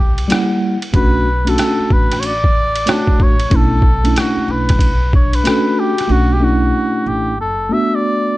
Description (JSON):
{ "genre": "hip hop, jazz-hop", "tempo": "93 BPM", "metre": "4/4", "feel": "swing 65% on 16ths", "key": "B minor", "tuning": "A4 = 440 Hz", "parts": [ { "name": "trumpet with cup mute", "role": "melody", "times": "0.0-8.4 s", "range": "D4 to E5", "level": "-19 LUFS", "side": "equal", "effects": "none" }, { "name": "upright bass", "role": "bass", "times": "0.0-7.7 s", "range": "F#1 to C2", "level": "-19 LUFS", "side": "equal", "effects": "none" }, { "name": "trip hop sampler-style drum kit", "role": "drums", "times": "0.2-6.1 s", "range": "hi-hat, kick drum, ride cymbal, rim click", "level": "-15 LUFS", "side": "equal", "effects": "none" }, { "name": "mellow tine electric piano", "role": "accompaniment", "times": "0.3-8.4 s", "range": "G3 to F#5", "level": "-17 LUFS", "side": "right 1 dB", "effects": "medium stereo tremolo" }, { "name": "vibraphone with soft mallets", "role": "second line", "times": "5.1-6.1 s", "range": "D4 to F#4", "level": "-22 LUFS", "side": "left 7 dB", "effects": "none" } ], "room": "small room ambience", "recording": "none", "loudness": "-12 LUFS", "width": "side -18 dB against mid", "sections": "0.0-6.1 A section; 6.1-8.4 B section", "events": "none", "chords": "0.0 C7#11; 0.9 Bm9; 6.1 Bm7" }